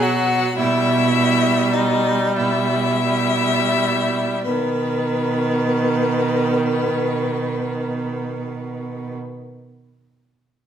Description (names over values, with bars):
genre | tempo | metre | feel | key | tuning
classical, slow romantic movement for string quartet | 27-37 BPM (dotted quarters) | 6/8 | rubato | B major | A4 = 440 Hz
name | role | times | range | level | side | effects
warm violin | melody | 0.0-9.1 s | B4 to F#5 | -24 LUFS | left 8 dB | none
rich violin | second line | 0.0-9.2 s | B3 to F#4 | -25 LUFS | left 2 dB | none
clear viola | accompaniment | 0.0-9.2 s | D#3 to G3 | -23 LUFS | right 2 dB | none
clear cello | bass | 0.0-9.2 s | B2 | -22 LUFS | right 4 dB | none
room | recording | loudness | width
wet recital hall reverb, RT60 1.3 s | none | -17 LUFS | side -9 dB against mid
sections
0.0-4.5 A section; 4.5-8.4 B section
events
slowing down 0.0-4.5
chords
0.0 B5; 0.6 Em/B; 4.5 B